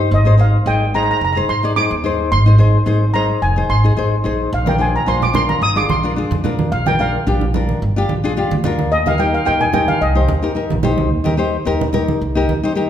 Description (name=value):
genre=calypso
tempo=109 BPM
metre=4/4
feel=swing 53% on 16ths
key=Eb major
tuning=A4 = 444 Hz
part: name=nylon-string guitar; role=accompaniment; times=0.0-12.9 s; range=D4 to Eb5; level=-19 LUFS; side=left 3 dB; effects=none
part: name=upright bass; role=bass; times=0.0-12.8 s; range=F1 to G2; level=-17 LUFS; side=equal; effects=none
part: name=steel pan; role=melody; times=0.1-12.7 s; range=Eb5 to Eb6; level=-19 LUFS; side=right 1 dB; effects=none
part: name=congas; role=percussion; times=4.7-12.6 s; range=none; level=-22 LUFS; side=right 4 dB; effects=none
room=wet recital hall reverb, RT60 1.8 s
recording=minimal, uncompressed stereo recording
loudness=-14 LUFS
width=side -10 dB against mid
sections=0.0-12.9 A section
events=none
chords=0.1 Ab; 4.5 Bb; 8.9 Eb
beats=| 0.12 0.67 1.22 1.77 | 2.32 2.87 3.42 3.97 | 4.52 5.07 5.62 6.17 | 6.72 7.27 7.82 8.37 | 8.92 9.47 10.02 10.57 | 11.12 11.67 12.22 12.77